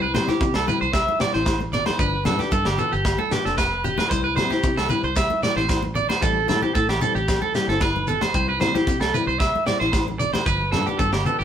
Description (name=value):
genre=highlife guitar band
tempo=114 BPM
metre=4/4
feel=straight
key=C major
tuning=A4 = 436 Hz
part: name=nylon-string guitar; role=accompaniment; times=0.0-11.4 s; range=F3 to E4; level=-27 LUFS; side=left 4 dB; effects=none
part: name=electric guitar at the edge of break-up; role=arpeggios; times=0.0-11.4 s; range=G4 to E5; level=-23 LUFS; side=right 3 dB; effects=none
part: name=fingered electric bass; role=bass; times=0.0-11.4 s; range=F1 to C3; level=-28 LUFS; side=equal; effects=none
part: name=tight funk drum kit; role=drums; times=0.1-11.2 s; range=kick drum, snare drum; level=-26 LUFS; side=equal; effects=none
part: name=agogo bells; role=percussion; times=0.1-11.3 s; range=none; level=-35 LUFS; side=right 2 dB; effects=none
part: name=congas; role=percussion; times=0.1-11.4 s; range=none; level=-32 LUFS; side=left 3 dB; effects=none
part: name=shekere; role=percussion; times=0.2-11.4 s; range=none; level=-32 LUFS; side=left 1 dB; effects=none
room=moderate stone room reverb, RT60 1.0 s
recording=band playing live in one room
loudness=-19 LUFS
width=side -9 dB against mid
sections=0.0-11.4 A section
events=none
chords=0.0 C; 2.0 G7; 4.1 C; 6.2 Am7; 8.3 C; 10.5 G7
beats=0.42 0.94 1.47 | 2.00 2.53 3.06 3.58 | 4.11 4.64 5.17 5.70 | 6.23 6.76 7.29 7.81 | 8.34 8.87 9.40 9.93 | 10.46 10.99